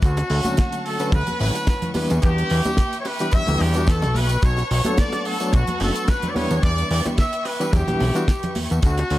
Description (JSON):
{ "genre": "nu-disco, nu disco", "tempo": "109 BPM", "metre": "4/4", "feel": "swing 54% on 16ths", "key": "E dorian", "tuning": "A4 = 436 Hz", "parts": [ { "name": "bright trumpet section", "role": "melody", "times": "0.0-9.2 s", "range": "F#4 to E5", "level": "-25 LUFS", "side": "left 1 dB", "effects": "analog delay" }, { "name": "warm studio string section", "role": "sustained chords", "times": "0.0-9.2 s", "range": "C#4 to C#6", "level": "-34 LUFS", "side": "equal", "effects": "sidechain pumping" }, { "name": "fat analog bass", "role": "bass", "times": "0.0-9.2 s", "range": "F#1 to E2", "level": "-21 LUFS", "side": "equal", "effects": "none" }, { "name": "damped 70s drum kit", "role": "drums", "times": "0.0-9.2 s", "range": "hi-hat, rim click, snare drum", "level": "-29 LUFS", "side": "right 2 dB", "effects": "none" }, { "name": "kick drum", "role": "drums", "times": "0.0-8.9 s", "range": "none", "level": "-19 LUFS", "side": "equal", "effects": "none" }, { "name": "tambourine, bongos and congas", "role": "percussion", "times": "0.0-9.1 s", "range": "none", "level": "-30 LUFS", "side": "right 1 dB", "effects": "none" }, { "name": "barky reed electric piano", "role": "accompaniment", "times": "0.4-8.3 s", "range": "D3 to C#5", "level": "-26 LUFS", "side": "equal", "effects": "overdrive, fast tremolo, sidechain pumping" } ], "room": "studio reverb", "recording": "dry, gritty hardware recording", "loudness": "-18 LUFS", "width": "side -15 dB against mid", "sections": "0.0-9.2 A section", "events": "none", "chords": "0.0 Dmaj7; 2.0 Em7; 4.4 Bm7; 6.4 Em7" }